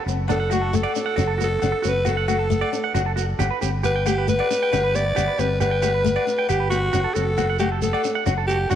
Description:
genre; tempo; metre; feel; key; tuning
highlife guitar band; 136 BPM; 4/4; straight; G major; A4 = 440 Hz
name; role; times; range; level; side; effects
flamenco guitar; accompaniment; 0.0-8.8 s; A3 to D4; -29 LUFS; left 10 dB; none
clean electric guitar; arpeggios; 0.0-8.8 s; D4 to G5; -28 LUFS; right 10 dB; slapback echo
fingered electric bass; bass; 0.1-8.8 s; F#1 to G1; -25 LUFS; equal; none
shekere; percussion; 0.1-8.8 s; none; -30 LUFS; right 5 dB; none
raspy alto saxophone; melody; 0.3-8.8 s; F#4 to D5; -23 LUFS; equal; slapback echo
agogo bells; percussion; 0.3-8.8 s; none; -30 LUFS; left 11 dB; none
room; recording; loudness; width
moderate plate reverb, RT60 3.6 s; 1960s-style stereo with parts hard left and right; -19 LUFS; side -10 dB against mid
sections
0.0-8.8 A section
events
none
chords
0.0 D/F#; 3.4 G; 6.9 D/F#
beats
0.29 0.74 1.18 | 1.62 2.07 2.51 2.95 | 3.40 3.84 4.28 4.72 | 5.17 5.61 6.05 6.50 | 6.94 7.38 7.82 8.27 | 8.71

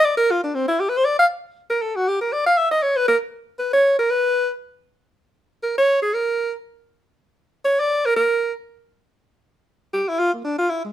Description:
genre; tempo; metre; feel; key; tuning
jazz; 236 BPM; 4/4; swing 58% on 8ths; unclear; A4 = 441 Hz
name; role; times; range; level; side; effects
bright alto saxophone; solo; 0.0-10.9 s; Ab3 to F5; -17 LUFS; equal; none
room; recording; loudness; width
light reverb; minimal, uncompressed stereo recording; -18 LUFS; side -12 dB against mid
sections
0.0-1.5 A section; 1.5-9.7 A section; 9.7-10.9 A section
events
alto saxophone solo 0.0-9.7, 9.7-10.9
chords
none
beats
0.02 0.27 | 0.53 0.78 1.03 1.29 | 1.54 1.79 2.05 2.30 | 2.56 2.81 3.06 3.32 | 3.57 3.83 4.08 4.33 | 4.59 4.84 5.09 5.35 | 5.60 5.86 6.11 6.37 | 6.62 6.87 7.13 7.38 | 7.63 7.89 8.14 8.39 | 8.65 8.90 9.15 9.41 | 9.66 9.92 10.17 10.42 | 10.68

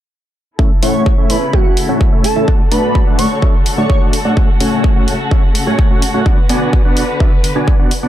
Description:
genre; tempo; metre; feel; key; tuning
EDM, festival progressive house; 127 BPM; 4/4; straight; A major; A4 = 440 Hz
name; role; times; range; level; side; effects
dark chamber string section; sustained chords; 0.6-8.1 s; C#3 to B4; -21 LUFS; left 2 dB; sidechain pumping, low-pass filter
dense compressed supersaw; riff; 0.6-8.1 s; A3 to A5; -17 LUFS; equal; sidechain pumping, low-pass filter, ping-pong delay
electronic kick drum; drums; 0.6-7.8 s; none; -12 LUFS; equal; small room ambience
airy dreamy lead; melody; 0.8-4.0 s; F#4 to C#5; -19 LUFS; right 2 dB; chorus, vintage 12-bit sampler grit, ping-pong delay
electronic hi-hat; drums; 0.8-8.0 s; none; -22 LUFS; right 1 dB; small room ambience
room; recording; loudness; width
light reverb; dark, warm production; -11 LUFS; side -12 dB against mid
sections
0.6-8.1 A section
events
filter sweep on string section 0.6-8.1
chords
0.6 A; 2.5 D; 4.4 F#m; 6.3 Bm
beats
| 0.59 1.06 1.53 2.01 | 2.48 2.95 3.42 3.90 | 4.37 4.84 5.31 5.79 | 6.26 6.73 7.20 7.68

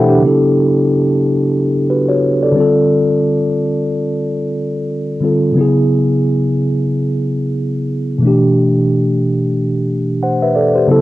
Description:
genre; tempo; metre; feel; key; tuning
R&B; 90 BPM; 4/4; swing 59% on 16ths; B minor; A4 = 440 Hz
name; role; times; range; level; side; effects
mellow tine electric piano; solo; 0.0-11.0 s; B2 to B5; -12 LUFS; equal; slow stereo tremolo
room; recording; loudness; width
moderate small room reverb, RT60 0.6 s; home recording on cassette; -12 LUFS; side -16 dB against mid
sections
0.2-10.9 A section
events
tine electric piano fill 0.0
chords
0.2 B9sus4; 2.5 Dm7; 5.5 F#9sus4; 8.2 A9sus4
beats
| 0.22 0.88 1.55 2.22 | 2.88 3.55 4.22 4.88 | 5.55 6.22 6.88 7.55 | 8.22 8.88 9.55 10.22 | 10.88

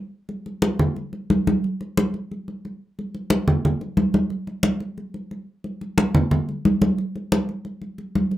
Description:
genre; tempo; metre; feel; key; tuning
jazz; 180 BPM; 4/4; straight; none; none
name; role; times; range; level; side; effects
congas; percussion; 0.3-8.4 s; none; -21 LUFS; equal; none
room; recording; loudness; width
wet club ambience, RT60 0.5 s; none; -20 LUFS; side -14 dB against mid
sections
0.0-8.3 A section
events
none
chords
none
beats
| 0.30 0.64 0.97 1.30 | 1.64 1.97 2.31 2.64 | 2.97 3.31 3.64 3.98 | 4.31 4.64 4.98 5.31 | 5.64 5.98 6.31 6.64 | 6.98 7.31 7.64 7.98 | 8.31

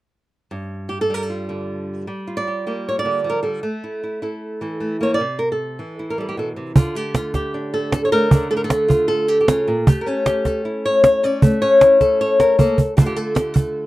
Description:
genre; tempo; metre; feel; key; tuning
flamenco; 154 BPM; 4/4; straight; unclear; A4 = 435 Hz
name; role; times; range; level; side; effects
flamenco guitar; melody; 0.5-13.9 s; G2 to D5; -18 LUFS; left 1 dB; none
cajon; percussion; 6.8-13.8 s; none; -15 LUFS; right 1 dB; none
room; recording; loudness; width
light reverb; dry, close 1970s-style studio recording; -16 LUFS; side -17 dB against mid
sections
0.5-6.8 A section; 6.8-13.9 B section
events
drum fill 12.4-13.0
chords
0.5 Gm7; 3.6 A5; 5.2 C; 6.8 Dm; 9.9 A; 13.0 Dm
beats
| 0.51 0.90 1.29 1.68 | 2.08 2.47 2.86 3.25 | 3.64 4.03 4.42 4.81 | 5.20 5.59 5.98 6.37 | 6.76 7.15 7.54 7.93 | 8.31 8.70 9.09 9.48 | 9.87 10.26 10.65 11.03 | 11.42 11.81 12.20 12.59 | 12.98 13.37 13.75

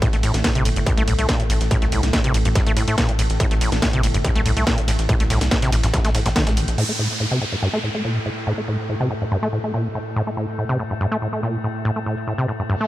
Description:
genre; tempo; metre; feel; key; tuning
driving peak-time techno; 142 BPM; 4/4; straight; A minor; A4 = 440 Hz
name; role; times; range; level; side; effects
acid bass, saw; riff; 0.0-12.9 s; G2 to A3; -23 LUFS; equal; sidechain pumping, dub echo
metallic inharmonic drone; drone; 0.0-12.9 s; A2 to A3; -28 LUFS; equal; chorus, built-in reverb, sidechain pumping
dusty soul sampler-style drum kit; drums; 0.0-6.7 s; hi-hat, snare drum; -34 LUFS; left 1 dB; none
electronic kick drum; drums; 0.0-6.4 s; none; -21 LUFS; equal; distortion
techno drum kit; drums; 0.0-6.9 s; crash cymbal, hi-hat, ride cymbal, snare drum; -26 LUFS; equal; sidechain pumping on hats, sidechain pumping on cymbals
tight sequencer bass; bass; 0.1-6.8 s; G1 to A2; -23 LUFS; equal; sidechain pumping
downlifter and reverse cymbal; sound effects; 6.8-12.9 s; none; -30 LUFS; equal; none
room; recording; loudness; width
light reverb; none; -18 LUFS; side -15 dB against mid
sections
0.0-6.8 A section; 6.8-12.9 B section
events
drop 0.0-6.8; band accent 6.4; filter sweep on acid bass 6.8-12.9; reverse cymbal 12.8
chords
0.0 Am; 6.8 N.C.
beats
| 0.02 0.44 0.86 1.29 | 1.71 2.13 2.56 2.98 | 3.40 3.82 4.25 4.67 | 5.09 5.51 5.94 6.36 | 6.78 7.20 7.63 8.05 | 8.47 8.89 9.32 9.74 | 10.16 10.58 11.01 11.43 | 11.85 12.27 12.70

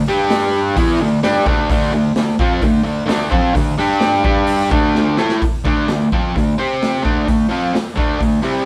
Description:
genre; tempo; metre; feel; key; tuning
garage rock duo or trio; 129 BPM; 4/4; straight; D minor; A4 = 444 Hz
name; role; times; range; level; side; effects
fuzz guitar; riff; 0.1-8.7 s; C3 to C5; -18 LUFS; equal; distortion
raw garage drum kit; drums; 0.3-8.3 s; hi-hat, kick drum, snare drum; -22 LUFS; equal; none
room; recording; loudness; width
moderate studio reverb, RT60 0.8 s; band playing live in one room; -16 LUFS; mono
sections
0.0-5.4 A section; 5.4-8.7 B section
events
drum fill 4.9-5.4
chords
0.0 G5; 0.7 Dm; 3.8 G5; 4.7 D5; 5.4 Dm; 6.6 C5; 7.0 Dm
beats
0.28 0.75 1.21 | 1.68 2.15 2.61 3.08 | 3.54 4.01 4.47 4.94 | 5.41 5.88 6.34 6.81 | 7.28 7.74 8.21

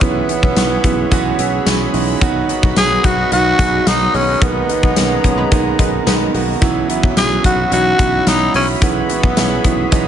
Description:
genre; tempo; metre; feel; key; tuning
1980s-style pop; 109 BPM; 4/4; straight; B major; A4 = 440 Hz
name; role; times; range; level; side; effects
raspy tenor saxophone; melody; 0.0-10.1 s; B3 to G#4; -18 LUFS; equal; shimmer reverb
clear concert grand piano; accompaniment; 0.0-10.1 s; D#3 to G#4; -19 LUFS; right 6 dB; shimmer reverb
chorused pulse-width pad; sustained chords; 0.0-10.1 s; F#4 to B5; -24 LUFS; left 3 dB; shimmer reverb
sustaining fretless electric bass; bass; 0.0-10.1 s; B1; -21 LUFS; left 1 dB; none
huge arena drum kit; drums; 0.0-10.1 s; hi-hat, kick drum, snare drum, tambourine; -17 LUFS; left 1 dB; none
funky polysynth comp; stabs; 5.4-6.3 s; G#3 to B4; -28 LUFS; left 3 dB; none
room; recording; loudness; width
light reverb, small room ambience; nothing above 10.9 kHz; -12 LUFS; side -9 dB against mid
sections
0.0-10.1 A section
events
band accent 4.4-6.6; grand piano fill 9.9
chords
0.0 C#m7/B; 2.2 B; 4.4 G#madd9/B; 6.6 F#7sus4/B; 8.8 C#m7/B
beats
| 0.01 0.56 1.11 1.67 | 2.22 2.77 3.32 3.87 | 4.42 4.97 5.52 6.07 | 6.62 7.17 7.72 8.27 | 8.82 9.37 9.92

